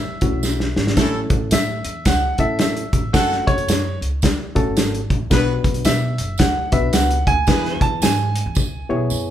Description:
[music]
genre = uptempo 1960s-style soul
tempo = 111 BPM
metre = 4/4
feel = swing 62% on 8ths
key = A major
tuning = A4 = 440 Hz
[part]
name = clear baby grand piano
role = melody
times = 0.0-9.3 s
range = C#5 to A5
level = -23 LUFS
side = right 2 dB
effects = none
[part]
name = barky reed electric piano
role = accompaniment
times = 0.2-9.3 s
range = A2 to C#5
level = -24 LUFS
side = left 2 dB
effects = overdrive
[part]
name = upright bass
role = bass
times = 0.2-9.3 s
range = F#1 to B2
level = -24 LUFS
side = equal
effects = none
[part]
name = warm soul drum kit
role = drums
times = 0.2-8.7 s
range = hi-hat, kick drum, snare drum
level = -19 LUFS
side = equal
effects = none
[part]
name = tambourine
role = percussion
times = 0.4-9.3 s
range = none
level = -30 LUFS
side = right 6 dB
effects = none
[part]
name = clear horn section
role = second line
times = 1.0-7.9 s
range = A3 to B4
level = -27 LUFS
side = right 1 dB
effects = none
[sound]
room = light reverb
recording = band playing live in one room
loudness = -16 LUFS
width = side -10 dB against mid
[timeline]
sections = 1.0-9.3 A section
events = drum fill 0.4-1.0, 8.6-9.3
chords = 0.0 Amaj7; 1.0 A; 3.1 F#m; 5.3 Bm; 7.5 E

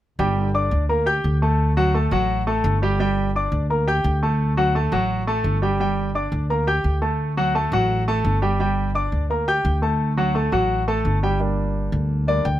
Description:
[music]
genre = latin, salsa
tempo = 171 BPM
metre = 4/4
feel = straight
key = G harmonic minor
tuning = A4 = 440 Hz
[part]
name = warm grand piano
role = accompaniment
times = 0.2-12.6 s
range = F#3 to G6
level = -21 LUFS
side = equal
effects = none
[part]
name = upright bass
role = bass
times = 0.2-12.6 s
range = G1 to D2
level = -22 LUFS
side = equal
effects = none
[sound]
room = little or no reverb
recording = close, detailed microphones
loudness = -19 LUFS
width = side -13 dB against mid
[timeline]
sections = 0.2-11.4 A section; 11.4-12.6 B section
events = grand piano solo 11.4-12.6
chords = 0.2 Gm; 1.6 D; 3.0 Gm; 4.4 D; 5.8 Gm; 7.2 D; 8.6 Gm; 10.0 D; 11.4 Gm

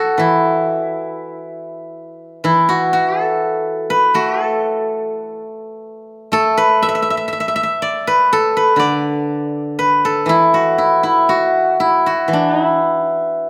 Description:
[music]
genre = chinese traditional, Chinese solo plucked strings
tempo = 61 BPM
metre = 4/4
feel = rubato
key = E shang mode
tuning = A4 = 442 Hz
[part]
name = steel-string zither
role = solo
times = 0.0-13.5 s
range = D3 to E5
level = -16 LUFS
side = equal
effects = none
[sound]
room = moderate recital hall reverb, RT60 1.5 s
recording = none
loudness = -16 LUFS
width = mono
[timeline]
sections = 0.0-13.5 A section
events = none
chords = none

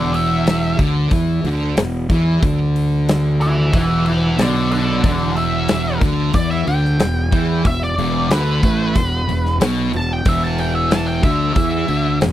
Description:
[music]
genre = blues rock power trio and southern rock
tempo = 92 BPM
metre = 4/4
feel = straight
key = E minor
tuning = A4 = 440 Hz
[part]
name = octave-fuzz lead guitar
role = melody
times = 0.0-12.2 s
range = A4 to A5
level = -22 LUFS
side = equal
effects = wah, distortion, slapback echo
[part]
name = thick fuzz guitar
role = riff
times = 0.0-12.3 s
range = E2 to E3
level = -19 LUFS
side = equal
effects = distortion
[part]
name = fuzz fingered electric bass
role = bass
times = 0.0-12.3 s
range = E1 to E2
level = -21 LUFS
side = equal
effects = overdrive
[part]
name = huge arena drum kit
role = drums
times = 0.1-12.3 s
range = hi-hat, kick drum, snare drum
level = -20 LUFS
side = equal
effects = none
[sound]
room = little or no reverb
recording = dry, close 1970s-style studio recording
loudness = -15 LUFS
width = side -13 dB against mid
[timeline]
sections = 0.0-12.3 A section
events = lead electric guitar solo 0.0-12.3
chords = 0.0 E5

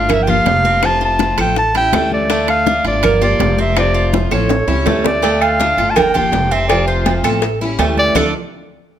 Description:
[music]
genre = latin, Cuban son and guajira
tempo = 164 BPM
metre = 4/4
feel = straight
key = D minor from 5.2 s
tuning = A4 = 440 Hz
[part]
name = warm clarinet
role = melody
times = 0.0-8.3 s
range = A4 to A5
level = -16 LUFS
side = right 1 dB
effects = none
[part]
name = picked steel-string acoustic guitar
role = accompaniment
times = 0.0-8.3 s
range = C3 to G4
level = -21 LUFS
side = left 3 dB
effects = none
[part]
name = Cuban tres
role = arpeggios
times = 0.0-8.3 s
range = A3 to D5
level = -20 LUFS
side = right 5 dB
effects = none
[part]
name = upright bass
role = bass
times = 0.0-8.3 s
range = F1 to D2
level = -20 LUFS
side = equal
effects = none
[part]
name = bongos and cowbell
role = percussion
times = 0.1-8.2 s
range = none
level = -23 LUFS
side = left 9 dB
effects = none
[part]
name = claves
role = percussion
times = 0.1-8.2 s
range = none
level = -28 LUFS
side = left 4 dB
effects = none
[part]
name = congas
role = percussion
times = 0.1-8.2 s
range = none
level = -23 LUFS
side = left 2 dB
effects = none
[part]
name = timbales and agogo bells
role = percussion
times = 0.1-8.2 s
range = none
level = -22 LUFS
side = right 7 dB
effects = none
[sound]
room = light reverb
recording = close, detailed microphones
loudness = -12 LUFS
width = side -10 dB against mid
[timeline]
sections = 0.0-5.2 A section; 5.2-8.2 B section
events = drum fill 4.1-5.2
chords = 0.1 Gm7; 0.8 F; 1.6 A7; 2.3 Dm; 3.0 Gm7; 3.8 F; 4.5 A7; 5.2 Dm; 6.0 Gm7; 6.7 F; 7.4 A7; 8.2 Dm

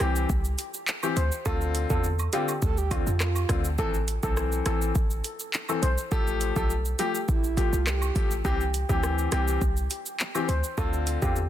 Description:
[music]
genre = dancehall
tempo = 103 BPM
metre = 4/4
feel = straight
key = unclear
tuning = A4 = 440 Hz
[part]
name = steel pan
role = melody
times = 0.0-11.3 s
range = G4 to C5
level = -33 LUFS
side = right 2 dB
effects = ping-pong delay
[part]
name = clear concert grand piano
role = accompaniment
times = 0.0-11.4 s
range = D3 to A4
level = -31 LUFS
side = left 6 dB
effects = none
[part]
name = warm 808-style bass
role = bass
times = 0.0-11.5 s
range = A1 to F2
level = -27 LUFS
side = equal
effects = none
[part]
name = afro-pop drum kit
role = drums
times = 0.0-11.5 s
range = handclaps, hi-hat, kick drum, rim click, shaker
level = -29 LUFS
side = equal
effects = overdrive
[part]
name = cabasa and woodblock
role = percussion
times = 0.0-11.2 s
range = none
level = -39 LUFS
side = right 8 dB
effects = none
[part]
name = breathy flute-like synth lead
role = second line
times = 2.6-3.6, 7.3-8.3 s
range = E4 to A4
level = -37 LUFS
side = right 8 dB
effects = chorus, ping-pong delay
[sound]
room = digital ambience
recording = dense, heavily limited modern master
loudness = -24 LUFS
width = side -12 dB against mid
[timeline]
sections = 0.0-11.5 A section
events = none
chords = 0.0 C; 1.5 Dm7; 3.8 Am; 6.1 Fadd9/A; 8.4 C; 10.8 Dm7

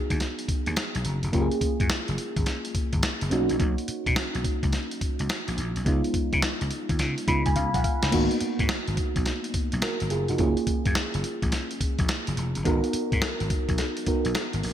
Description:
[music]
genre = R&B, new jack swing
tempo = 106 BPM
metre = 4/4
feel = swing 65% on 16ths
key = F# major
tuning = A4 = 436 Hz
[part]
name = mellow FM electric piano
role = accompaniment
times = 0.0-14.7 s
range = G#3 to B5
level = -28 LUFS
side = right 1 dB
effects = chorus
[part]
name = vintage slap bass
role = bass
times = 0.1-14.7 s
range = E#1 to C#3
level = -28 LUFS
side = equal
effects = none
[part]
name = dusty soul sampler-style drum kit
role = drums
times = 0.1-14.7 s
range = crash cymbal, hi-hat, kick drum, snare drum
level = -27 LUFS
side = equal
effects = gated reverb
[part]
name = cowbell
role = percussion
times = 12.7-14.5 s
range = none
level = -38 LUFS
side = left 7 dB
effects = none
[sound]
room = light reverb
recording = bright 1980s-style digital production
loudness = -24 LUFS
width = side -10 dB against mid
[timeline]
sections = 0.0-8.1 A section; 8.1-14.7 B section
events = FM electric piano fill 7.0-8.1; drum fill 7.6-8.1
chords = 0.0 C#9sus4 (rootless); 1.3 F#maj9; 3.3 Bmaj9; 5.9 C#7; 8.1 G#m7; 10.4 F#maj7; 12.7 G#m7

